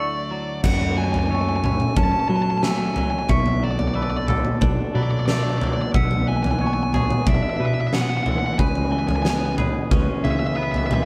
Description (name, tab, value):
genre	post-rock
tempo	91 BPM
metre	4/4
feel	straight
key	unclear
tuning	A4 = 440 Hz
part	dark smooth lead guitar	melody	0.0-11.0 s	D5 to A5	-29 LUFS	equal	overdrive
part	hollow soft pad	sustained chords	0.0-11.1 s	D3 to B4	-37 LUFS	equal	none
part	twangy electric guitar	arpeggios	0.0-11.1 s	F#2 to A4	-30 LUFS	equal	spring reverb
part	twangy electric guitar	arpeggios	0.0-11.1 s	G#4 to C#6	-35 LUFS	equal	none
part	fingered electric bass	bass	0.0-11.1 s	B1 to F#3	-27 LUFS	equal	none
part	huge arena drum kit	drums	0.6-11.1 s	crash cymbal, kick drum, snare drum, toms	-25 LUFS	equal	none
room	moderate studio ambience, RT60 0.5 s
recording	band playing live in one room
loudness	-21 LUFS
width	mono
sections	0.6-11.1 A section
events	none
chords	0.0 Dmaj7; 0.6 F#madd9; 3.3 Bm7; 5.9 E7/B; 8.6 C#m7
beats	| 0.64 1.30 1.97 2.63 | 3.30 3.96 4.62 5.29 | 5.95 6.61 7.27 7.93 | 8.59 9.25 9.91 10.57